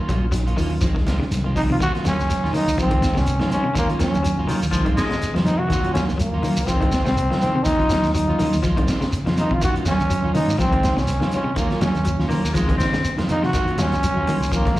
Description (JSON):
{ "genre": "afrobeat", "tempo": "123 BPM", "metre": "4/4", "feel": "swing 56% on 16ths", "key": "Eb dorian", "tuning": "A4 = 440 Hz", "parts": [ { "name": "semi-hollow electric guitar", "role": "arpeggios", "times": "0.0-14.8 s", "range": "C3 to Gb3", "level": "-27 LUFS", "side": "left 2 dB", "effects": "none" }, { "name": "electric guitar at the edge of break-up", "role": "stabs", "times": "0.0-14.8 s", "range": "Eb3 to F4", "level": "-28 LUFS", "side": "right 4 dB", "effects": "analog chorus, plate reverb, slapback echo" }, { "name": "fingered electric bass", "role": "bass", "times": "0.1-14.8 s", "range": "Bb1 to Db3", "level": "-24 LUFS", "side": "equal", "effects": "none" }, { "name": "crunchy breakbeat drum kit", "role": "drums", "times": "0.1-14.8 s", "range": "hi-hat, kick drum, snare drum", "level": "-26 LUFS", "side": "equal", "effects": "none" }, { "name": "congas", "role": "percussion", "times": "0.1-14.8 s", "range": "none", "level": "-28 LUFS", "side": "right 1 dB", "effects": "none" }, { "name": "shekere", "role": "percussion", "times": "0.1-14.8 s", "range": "none", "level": "-27 LUFS", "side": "equal", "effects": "none" }, { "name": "bright reed electric piano", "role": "accompaniment", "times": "0.2-14.8 s", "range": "F3 to Gb4", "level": "-31 LUFS", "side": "left 1 dB", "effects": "none" }, { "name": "growling trombone", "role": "melody", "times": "1.6-14.8 s", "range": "Bb3 to Gb4", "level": "-23 LUFS", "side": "equal", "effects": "plate reverb, slapback echo" }, { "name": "clear baritone saxophone", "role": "second line", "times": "4.5-5.3, 12.3-13.1 s", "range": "Eb3 to C4", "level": "-27 LUFS", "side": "left 3 dB", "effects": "plate reverb, slapback echo" } ], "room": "light reverb", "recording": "live gig heard through the venue's PA, club reverb", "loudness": "-18 LUFS", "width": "side -16 dB against mid", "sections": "0.0-1.8 A section; 1.8-14.8 B section", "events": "none", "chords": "0.0 Ebm9; 0.8 Dbmaj9; 1.8 Ebm9; 2.8 Dbmaj9; 3.8 Ebm9; 4.7 Dbmaj9; 5.7 Ebm9; 6.7 Dbmaj9; 7.7 Ebm9; 8.6 Dbmaj9; 9.6 Ebm9; 10.6 Dbmaj9; 11.6 Ebm9; 12.6 Dbmaj9; 13.5 Ebm9" }